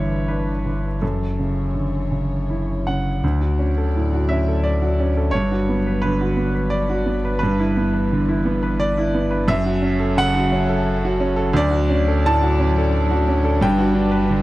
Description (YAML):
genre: neoclassical piano and strings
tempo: 86 BPM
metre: 3/4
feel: rubato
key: unclear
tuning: A4 = 439 Hz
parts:
  - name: clear grand piano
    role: accompaniment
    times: 0.0-14.4 s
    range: D2 to A5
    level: -19 LUFS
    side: right 1 dB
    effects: none
  - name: dark chamber string section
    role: sustained chords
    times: 0.0-14.4 s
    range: E3 to D5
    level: -29 LUFS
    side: left 4 dB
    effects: none
  - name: sub bass with octave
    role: bass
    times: 0.0-14.4 s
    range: F#1 to D2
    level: -23 LUFS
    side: left 1 dB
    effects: none
room: little or no reverb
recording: dry, close 1970s-style studio recording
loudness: -17 LUFS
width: side -17 dB against mid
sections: 0.0-3.2 A section; 3.2-14.4 B section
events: none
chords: 0.0 Em7/G; 1.0 F#m7; 3.2 Dmaj7; 5.3 Gmaj7; 7.4 Em7/G; 9.5 F#m7; 11.6 Dmaj7; 13.6 Gmaj7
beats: 0.29 | 1.02 1.75 2.48 | 3.23 3.93 4.62 | 5.31 6.01 6.70 | 7.40 8.10 8.80 | 9.49 10.19 10.87 | 11.55 12.25 12.94 | 13.62 14.31